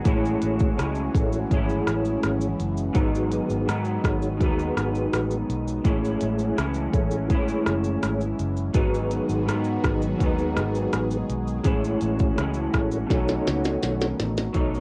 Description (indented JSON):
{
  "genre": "indie pop, bedroom pop",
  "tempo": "83 BPM",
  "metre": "4/4",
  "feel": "straight",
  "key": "F# dorian",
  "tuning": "A4 = 441 Hz",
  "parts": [
    { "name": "electric guitar through a small old amp", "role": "accompaniment", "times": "0.0-14.8 s", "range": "G#2 to E4", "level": "-30 LUFS", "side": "equal", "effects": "analog chorus, warbly pitch drift, cassette tape" },
    { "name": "mellow tonewheel organ", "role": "accompaniment", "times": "0.0-14.8 s", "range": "A3 to C#5", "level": "-30 LUFS", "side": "equal", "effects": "chorus vibrato, stopped rotary speaker, cassette tape, plate reverb" },
    { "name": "phased analog pad", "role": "sustained chords", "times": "0.0-14.8 s", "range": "D#3 to G#4", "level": "-36 LUFS", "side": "equal", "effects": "phaser, chorus, cassette tape" },
    { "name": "vintage muted fingered electric bass", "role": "bass", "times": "0.1-14.8 s", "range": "F#1 to G#2", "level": "-31 LUFS", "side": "equal", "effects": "none" },
    { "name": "minimal click drum kit", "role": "drums", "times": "0.1-14.8 s", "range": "hi-hat, kick drum, rim click, shaker, snare drum", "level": "-28 LUFS", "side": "equal", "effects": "vintage 12-bit sampler grit, cassette tape" }
  ],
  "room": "light reverb",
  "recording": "home recording on cassette",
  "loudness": "-24 LUFS",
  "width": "mono",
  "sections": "0.0-14.5 A section",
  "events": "drum fill 13.1-14.5",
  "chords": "0.1 F#m9/A; 3.0 G#m7; 5.9 F#m9/A; 8.7 G#m7; 11.6 F#m9/A; 13.1 B9"
}